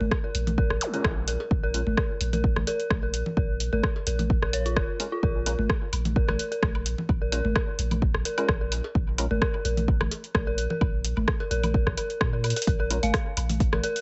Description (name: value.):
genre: minimal techno.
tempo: 129 BPM.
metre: 4/4.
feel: swing 53% on 16ths.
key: Bb minor.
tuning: A4 = 440 Hz.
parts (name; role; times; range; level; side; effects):
punchy sub bass; bass; 0.0-13.8 s; F1 to Bb2; -31 LUFS; equal; sidechain pumping.
congas, cowbell and woodblock; percussion; 0.0-13.8 s; none; -36 LUFS; equal; tape echo.
electronic kick drum; drums; 0.1-13.7 s; none; -28 LUFS; equal; overdrive.
punchy analog drum machine; drums; 0.1-14.0 s; hi-hat, rim click; -32 LUFS; equal; none.
dark detuned synth bell; riff; 0.2-13.9 s; F4 to F5; -34 LUFS; equal; chorus, sidechain pumping, tape echo.
zap; sound effects; 0.8-0.9 s; none; -37 LUFS; equal; none.
percussive organ stab; stabs; 0.9-1.8, 5.0-9.3, 12.9-13.0 s; Ab3 to Bb4; -39 LUFS; equal; lush chorus, tape echo.
room: digital ambience.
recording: nothing above 7.9 kHz.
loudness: -26 LUFS.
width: mono.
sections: 0.0-14.0 A section.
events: drum fill 12.4.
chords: 0.0 Bb7(no3).